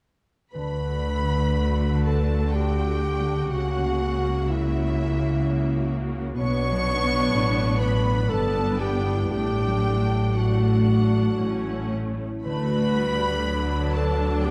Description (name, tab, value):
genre	classical, slow romantic movement for symphony orchestra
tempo	56-64 BPM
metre	3/4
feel	rubato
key	D major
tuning	A4 = 440 Hz
part	clear studio violin section	melody	0.5-14.5 s	E5 to C#6	-37 LUFS	equal	none
part	clear studio violin section	second line	0.5-14.5 s	E5 to C#6	-37 LUFS	equal	none
part	mellow clarinet	second line	0.5-14.5 s	E4 to C#5	-31 LUFS	equal	none
part	clear studio viola section	accompaniment	0.5-14.5 s	F#3 to F#4	-31 LUFS	equal	none
part	concert harp	arpeggios	0.5-14.5 s	G2 to D5	-35 LUFS	equal	none
part	rich studio cello section	bass	0.5-14.5 s	G2 to D3	-30 LUFS	equal	none
part	warm studio double bass section	bass	0.5-14.5 s	G1 to D2	-29 LUFS	equal	none
room	wet concert hall reverb, RT60 2.3 s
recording	dark, warm production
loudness	-24 LUFS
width	mono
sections	0.5-14.5 A section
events	none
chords	0.5 D; 3.5 F#7/C#; 6.4 Bm; 8.3 Em7/G; 9.3 D/A; 11.4 A; 12.4 D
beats	| 0.54 1.58 2.54 | 3.51 4.49 5.45 | 6.39 7.33 8.30 | 9.32 10.36 11.39 | 12.45 13.46 14.43